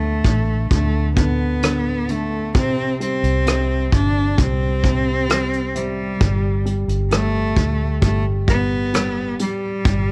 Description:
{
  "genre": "pop ballad",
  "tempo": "66 BPM",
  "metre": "4/4",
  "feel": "straight",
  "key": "G major",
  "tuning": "A4 = 440 Hz",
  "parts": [
    { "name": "rich cello", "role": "melody", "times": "0.0-10.1 s", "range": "G3 to D4", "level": "-25 LUFS", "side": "equal", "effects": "none" },
    { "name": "warm grand piano", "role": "accompaniment", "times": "0.0-10.1 s", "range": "C3 to G3", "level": "-28 LUFS", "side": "equal", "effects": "none" },
    { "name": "vintage muted fingered electric bass", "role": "bass", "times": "0.0-10.1 s", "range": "G1 to D2", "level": "-24 LUFS", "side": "equal", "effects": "none" },
    { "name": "soft brush drum kit", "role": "drums", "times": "0.2-10.1 s", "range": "hi-hat, kick drum, rim click", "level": "-22 LUFS", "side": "equal", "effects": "none" }
  ],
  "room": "small room ambience",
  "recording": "dark, warm production",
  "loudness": "-19 LUFS",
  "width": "mono",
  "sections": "0.0-10.1 A section",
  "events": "none",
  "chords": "0.0 D5; 2.5 C5; 6.2 G"
}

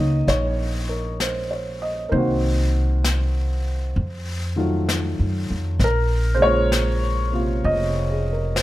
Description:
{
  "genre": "jazz ballad",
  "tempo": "65 BPM",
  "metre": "4/4",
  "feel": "swing 66% on 8ths",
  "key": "unclear",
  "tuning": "A4 = 442 Hz",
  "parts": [
    { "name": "warm upright piano", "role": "accompaniment", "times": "0.0-8.6 s", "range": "C3 to Eb5", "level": "-23 LUFS", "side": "equal", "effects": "none" },
    { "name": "upright bass", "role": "bass", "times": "0.0-8.6 s", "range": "F1 to Gb2", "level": "-22 LUFS", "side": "equal", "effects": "none" },
    { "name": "jazz brush drum kit", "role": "drums", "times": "0.3-8.6 s", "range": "brushed snare drum, hi-hat, snare drum", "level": "-30 LUFS", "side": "left 3 dB", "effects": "none" }
  ],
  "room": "little or no reverb",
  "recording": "none",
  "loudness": "-19 LUFS",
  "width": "side -16 dB against mid",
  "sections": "0.0-8.6 A section",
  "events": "none",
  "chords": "0.0 Ebm7; 2.1 Cm7b5; 4.0 F7b9; 5.8 Bbm7"
}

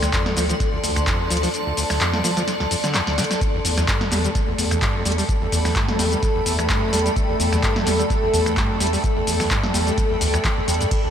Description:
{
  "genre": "acid house",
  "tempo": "128 BPM",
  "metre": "4/4",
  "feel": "swing 55% on 16ths",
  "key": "E phrygian",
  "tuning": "A4 = 440 Hz",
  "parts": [
    { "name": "acid bass, saw", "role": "riff", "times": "0.0-11.1 s", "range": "D2 to G3", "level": "-26 LUFS", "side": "equal", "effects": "overdrive, wide subtle chorus, sidechain pumping, tape echo" },
    { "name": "round analog bass", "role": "bass", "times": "0.0-10.8 s", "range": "D2 to E2", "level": "-24 LUFS", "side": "equal", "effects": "tube saturation, sidechain pumping" },
    { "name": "electro analog drum machine", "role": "drums", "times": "0.0-11.0 s", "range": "finger snaps, handclaps, hi-hat, ride cymbal, shaker, snare drum, toms", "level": "-24 LUFS", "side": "equal", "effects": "none" },
    { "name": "granular cloud pad", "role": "texture", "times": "0.0-11.1 s", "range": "A4 to C6", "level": "-26 LUFS", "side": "left 1 dB", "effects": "built-in reverb, sidechain pumping" },
    { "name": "electronic kick drum", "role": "drums", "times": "0.1-11.0 s", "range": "none", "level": "-24 LUFS", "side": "equal", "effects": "none" },
    { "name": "lush unison pad", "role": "sustained chords", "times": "3.4-11.1 s", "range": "A3 to A4", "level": "-25 LUFS", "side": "equal", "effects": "chorus, sidechain pumping" }
  ],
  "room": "moderate huge ambient reverb, RT60 4.1 s",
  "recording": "dreamy mix soaked in reverb",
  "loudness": "-18 LUFS",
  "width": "side -8 dB against mid",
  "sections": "0.0-11.1 A section",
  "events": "drum fill 2.5-3.4",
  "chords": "0.0 Dm7; 3.4 Em7"
}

